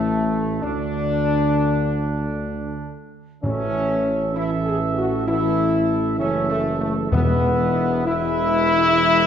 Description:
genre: classical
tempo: 65 BPM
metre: 4/4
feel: straight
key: A major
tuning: A4 = 439 Hz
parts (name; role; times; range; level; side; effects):
- warm trumpet section; melody; 0.0-9.3 s; A3 to E5; -28 LUFS; right 4 dB; none
- clear French horn section; sustained chords; 0.0-9.3 s; A3 to G#4; -21 LUFS; left 3 dB; none
- warm trombone section; sustained chords; 0.0-9.3 s; A2 to A3; -28 LUFS; right 5 dB; none
- mellow tuba; bass; 0.0-9.3 s; E1 to D2; -25 LUFS; right 3 dB; none
- timpani; percussion; 3.4-8.5 s; E2 to A2; -25 LUFS; left 1 dB; none
room: wet scoring stage reverb, RT60 1.7 s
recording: dark, warm production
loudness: -18 LUFS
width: side -8 dB against mid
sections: 0.0-9.3 A section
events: none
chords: 0.0 D5/A; 3.4 A; 7.1 E

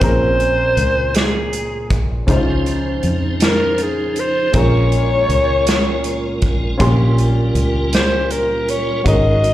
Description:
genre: slow gospel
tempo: 53 BPM (dotted quarters)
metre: 6/8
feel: straight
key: unclear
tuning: A4 = 440 Hz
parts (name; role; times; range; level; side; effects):
- breathy alto saxophone; melody; 0.0-9.5 s; Ab4 to Eb5; -18 LUFS; left 1 dB; slapback echo
- warm upright piano; accompaniment; 0.0-9.5 s; Ab2 to C6; -21 LUFS; left 1 dB; none
- fingered electric bass; bass; 0.0-9.5 s; Ab1 to F2; -20 LUFS; equal; none
- modern studio drum kit; drums; 0.0-9.5 s; hi-hat, kick drum, snare drum; -19 LUFS; equal; none
- tonewheel organ; sustained chords; 2.3-9.5 s; F3 to C5; -23 LUFS; right 2 dB; slow rotary speaker, overdrive, chorus vibrato
room: light reverb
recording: live gig heard through the venue's PA, recital hall reverb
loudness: -14 LUFS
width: side -14 dB against mid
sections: 0.0-9.5 A section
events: none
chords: 0.0 Bbm9; 2.3 Dbmaj9; 4.5 Bbm7; 6.8 Bbm69

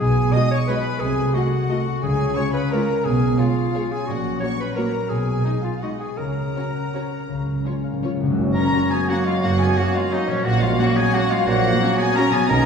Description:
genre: classical, orchestral ballroom waltz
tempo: 155-193 BPM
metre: 3/4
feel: rubato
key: F# major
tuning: A4 = 441 Hz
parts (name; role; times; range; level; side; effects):
- clear clarinet; second line; 0.0-12.7 s; E#3 to D#5; -26 LUFS; left 1 dB; none
- dark studio violin section; second line; 0.0-12.7 s; C#5 to D#6; -30 LUFS; left 2 dB; none
- concert harp; arpeggios; 0.0-12.7 s; F#2 to F#5; -27 LUFS; left 4 dB; none
- dark studio cello section; bass; 0.0-12.7 s; F#2 to C#3; -25 LUFS; right 2 dB; none
- dark studio double bass section; bass; 0.0-12.7 s; F#1 to C#2; -28 LUFS; right 4 dB; none
- warm studio violin section; melody; 0.3-12.7 s; C#5 to A#5; -30 LUFS; left 4 dB; none
- warm studio viola section; accompaniment; 0.3-12.3 s; F#3 to G#4; -31 LUFS; right 2 dB; none
- timpani; percussion; 2.0-2.5, 7.3-8.9 s; F#2 to C#3; -27 LUFS; equal; none
- bright trombone section; sustained chords; 8.4-12.7 s; D#3 to A#3; -28 LUFS; right 3 dB; none
- dark French horn section; sustained chords; 8.4-12.7 s; B3 to F#4; -26 LUFS; right 1 dB; none
- mellow trumpet; stabs; 8.4-12.7 s; C#5 to D#5; -29 LUFS; right 3 dB; none
- mellow tuba; bass; 8.4-12.7 s; F#1 to B1; -29 LUFS; right 1 dB; none
- clear oboe; second line; 8.5-12.7 s; C#4 to A#4; -26 LUFS; equal; none
room: wet scoring stage reverb, RT60 1.9 s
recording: heard from further back in the room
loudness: -18 LUFS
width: side -6 dB against mid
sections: 0.0-8.4 A section; 8.4-12.7 B section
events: timpani fill 7.3-8.4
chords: 0.0 G#m7/B; 1.0 Cdim7; 2.0 C#; 3.1 C#7/B; 4.1 F#/A#; 5.1 G#m/B; 6.2 F#/C#; 7.3 C#; 8.4 F#; 10.4 F#/A#

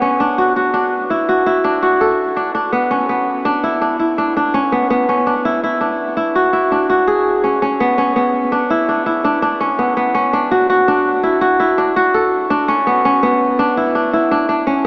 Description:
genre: progressive instrumental, progressive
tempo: 166 BPM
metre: 7/4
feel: straight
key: B dorian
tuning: A4 = 440 Hz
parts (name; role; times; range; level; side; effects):
- kora; solo; 0.0-14.9 s; B3 to A4; -16 LUFS; equal; analog delay
room: wet huge ambient reverb, RT60 7.8 s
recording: dreamy mix soaked in reverb, small speaker sound, faint mains hum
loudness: -16 LUFS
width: mono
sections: 0.0-7.6 A section; 7.6-14.9 B section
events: none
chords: 0.0 Bm11; 2.6 E7(no3); 12.7 C#m7

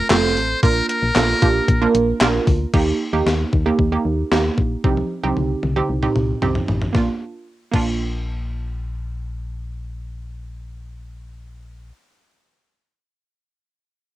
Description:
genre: synth-pop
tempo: 114 BPM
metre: 4/4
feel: straight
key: Bb major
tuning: A4 = 440 Hz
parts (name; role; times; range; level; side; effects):
- trumpet with metal mute; melody; 0.0-1.9 s; Bb4 to C5; -21 LUFS; left 1 dB; cassette tape
- solid FM bass; bass; 0.0-11.9 s; F1 to Eb2; -24 LUFS; left 1 dB; none
- analog pluck; accompaniment; 0.1-12.4 s; A3 to Bb4; -21 LUFS; right 4 dB; chorus, cassette tape
- gated 80s digital drum machine; drums; 0.1-7.9 s; crash cymbal, handclaps, hi-hat, kick drum, snare drum, toms; -20 LUFS; left 1 dB; gated reverb, gated reverb snare, cassette tape
room: moderate booth ambience, RT60 0.2 s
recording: home recording on cassette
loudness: -17 LUFS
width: side -15 dB against mid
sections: 0.0-2.7 A section; 2.7-6.9 B section; 6.9-11.2 C section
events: drum fill 4.8-6.9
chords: 0.0 F; 0.6 Bb; 2.7 Eb; 4.8 Cm; 6.9 Bb

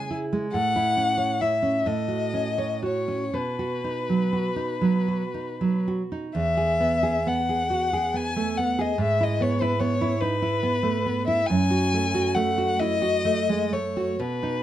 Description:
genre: romantic duo for violin and classical guitar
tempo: 38-49 BPM (dotted quarters)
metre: 6/8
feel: rubato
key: E major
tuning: A4 = 442 Hz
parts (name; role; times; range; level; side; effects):
- rich violin; melody; 0.0-14.6 s; B4 to G#5; -25 LUFS; left 3 dB; none
- nylon-string guitar; accompaniment; 0.0-14.6 s; E2 to C#5; -25 LUFS; right 3 dB; none
room: light reverb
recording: dark, warm production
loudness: -22 LUFS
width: side -12 dB against mid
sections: 0.0-6.3 A section; 6.3-14.6 B section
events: none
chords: 0.0 C#m; 0.6 A; 1.9 F#m/A; 3.3 B; 6.3 E; 9.0 E/G#; 11.5 F#m

